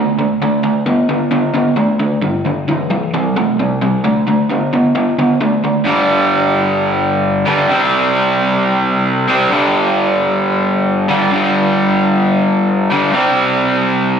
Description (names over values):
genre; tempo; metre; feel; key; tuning
rock; 132 BPM; 4/4; straight; G major; A4 = 435 Hz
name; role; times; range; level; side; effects
raw garage guitar; solo; 0.0-14.2 s; G2 to C4; -12 LUFS; equal; overdrive, slapback echo
room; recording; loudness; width
wet club reverb, RT60 0.8 s; live gig heard through the venue's PA, recital hall reverb; -12 LUFS; side -7 dB against mid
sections
0.0-5.9 A section; 5.9-14.2 B section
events
none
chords
0.0 D5; 2.2 G5; 3.1 C5; 4.0 D5; 5.9 G5; 7.7 C5; 9.5 G5; 13.2 C5